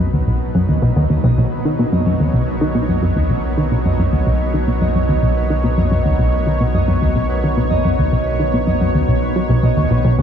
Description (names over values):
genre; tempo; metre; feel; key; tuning
ambient, sequencer-driven space music; 109 BPM; 4/4; straight; unclear; A4 = 441 Hz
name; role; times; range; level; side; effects
lush unison pad; sustained chords; 0.0-10.2 s; B2 to C#5; -23 LUFS; equal; chorus
concert harp; arpeggios; 0.0-10.2 s; B3 to D#5; -24 LUFS; moving between left 2 dB and right 4 dB; auto-pan, analog delay
plucky analog bass; riff; 0.0-10.2 s; B1 to F#3; -16 LUFS; equal; wide subtle chorus, analog delay
warm sub bass; bass; 0.0-10.2 s; B1; -22 LUFS; equal; none
room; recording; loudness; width
moderate huge ambient reverb, RT60 8.7 s; dark, warm production; -14 LUFS; side -8 dB against mid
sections
0.0-10.2 A section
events
fade-in on harp 0.0-10.2; filter sweep on analog synth bass 0.0-10.2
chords
0.0 B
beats
0.28 0.82 | 1.38 1.93 2.48 3.03 | 3.58 4.13 4.68 5.23 | 5.78 6.33 6.88 7.43 | 7.98 8.53 9.08 9.63 | 10.18